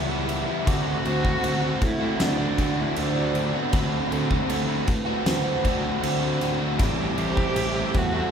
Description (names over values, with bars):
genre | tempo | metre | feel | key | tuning
post-rock | 78 BPM | 4/4 | straight | unclear | A4 = 439 Hz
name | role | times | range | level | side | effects
dark cello | melody | 0.0-8.3 s | B3 to G4 | -30 LUFS | right 3 dB | none
pedal steel guitar | sustained chords | 0.0-8.3 s | G3 to E6 | -38 LUFS | equal | none
vibraphone with medium hard mallets | arpeggios | 0.0-8.3 s | A4 to E5 | -34 LUFS | right 4 dB | none
biting overdriven guitar | riff | 0.0-8.3 s | A2 to F#4 | -29 LUFS | left 8 dB | none
biting overdriven guitar | riff | 0.0-8.3 s | A2 to F#4 | -28 LUFS | right 7 dB | none
fuzz picked electric bass | bass | 0.0-8.2 s | A1 to A2 | -29 LUFS | left 1 dB | overdrive
huge arena drum kit | drums | 0.3-8.1 s | crash cymbal, kick drum, snare drum | -28 LUFS | equal | none
room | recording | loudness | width
wet recital hall reverb, RT60 1.6 s | recorded in a church or concert hall | -22 LUFS | side -7 dB against mid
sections
0.0-8.3 A section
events
none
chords
0.0 Em7; 0.7 D7; 6.8 Am7